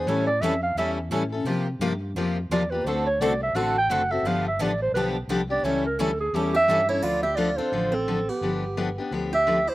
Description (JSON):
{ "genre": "acoustic string swing (jazz manouche)", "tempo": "172 BPM", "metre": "4/4", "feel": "swing 60% on 8ths", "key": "D minor", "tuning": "A4 = 440 Hz", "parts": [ { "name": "dark clarinet", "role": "melody", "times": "0.0-9.7 s", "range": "G4 to G5", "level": "-24 LUFS", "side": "right 2 dB", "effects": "none" }, { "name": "picked steel-string acoustic guitar", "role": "accompaniment", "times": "0.0-9.6 s", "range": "C3 to A4", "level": "-27 LUFS", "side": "left 3 dB", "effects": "none" }, { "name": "fingered electric bass", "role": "bass", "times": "0.0-9.7 s", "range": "F#1 to C3", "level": "-32 LUFS", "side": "equal", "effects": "none" }, { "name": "picked swing-style acoustic guitar", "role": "accompaniment", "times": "0.1-6.8 s", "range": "C3 to A4", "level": "-33 LUFS", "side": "right 5 dB", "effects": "slapback echo" }, { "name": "picked swing-style acoustic guitar", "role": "second line", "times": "6.5-9.7 s", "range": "B3 to G4", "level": "-33 LUFS", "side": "right 3 dB", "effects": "slapback echo" } ], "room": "little or no reverb", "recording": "recorded outdoors, with no room sound", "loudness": "-22 LUFS", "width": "side -16 dB against mid", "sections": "0.0-7.0 A section; 7.0-9.7 B section", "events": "clarinet solo 0.0-7.0", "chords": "0.1 A7; 1.5 C7sus4; 2.9 D7; 4.2 G7; 5.6 A7; 7.0 Dm7; 8.4 G7", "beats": "| 0.07 0.41 0.76 1.11 | 1.46 1.81 2.16 2.51 | 2.85 3.20 3.55 3.90 | 4.25 4.60 4.95 5.29 | 5.64 5.99 6.34 6.68 | 7.03 7.38 7.73 8.08 | 8.43 8.77 9.12 9.47" }